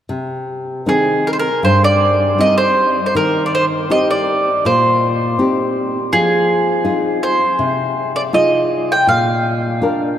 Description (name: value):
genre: fado-style ballad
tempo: 80 BPM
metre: 4/4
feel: rubato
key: C minor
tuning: A4 = 440 Hz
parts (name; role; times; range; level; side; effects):
- nylon-string guitar; accompaniment; 0.1-10.2 s; G2 to Bb4; -18 LUFS; left 1 dB; none
- mandolin; melody; 0.9-10.2 s; Ab4 to G5; -15 LUFS; right 1 dB; none
room: wet cathedral reverb, RT60 6.7 s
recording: in a vast, echoing space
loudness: -13 LUFS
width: side -10 dB against mid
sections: 0.1-10.2 A section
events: none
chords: 0.1 Cm; 3.1 Eb6; 6.1 Fm7; 9.1 Bb